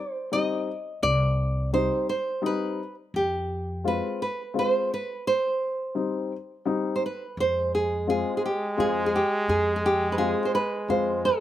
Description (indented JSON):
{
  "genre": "klezmer",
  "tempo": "85 BPM",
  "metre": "3/4",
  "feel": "straight",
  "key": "unclear",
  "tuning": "A4 = 440 Hz",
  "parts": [
    { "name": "nylon-string guitar", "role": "melody", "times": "0.0-11.4 s", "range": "G4 to Eb5", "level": "-26 LUFS", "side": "right 2 dB", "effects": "slapback echo" },
    { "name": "dark upright piano", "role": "accompaniment", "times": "0.3-11.2 s", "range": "G3 to F4", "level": "-28 LUFS", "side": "left 5 dB", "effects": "slapback echo" },
    { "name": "upright bass", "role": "bass", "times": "1.0-4.0, 7.4-11.3 s", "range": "C2 to F2", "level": "-30 LUFS", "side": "equal", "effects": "none" },
    { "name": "clear trombone", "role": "second line", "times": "7.4-11.4 s", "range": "Ab3", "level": "-29 LUFS", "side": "right 1 dB", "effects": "slapback echo" }
  ],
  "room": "little or no reverb",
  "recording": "recorded outdoors, with no room sound",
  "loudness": "-24 LUFS",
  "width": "side -12 dB against mid",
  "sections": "0.0-7.4 A section; 7.4-11.4 B section",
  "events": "none",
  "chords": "0.0 Cm; 3.1 Fm; 5.3 Cm; 7.4 Fm"
}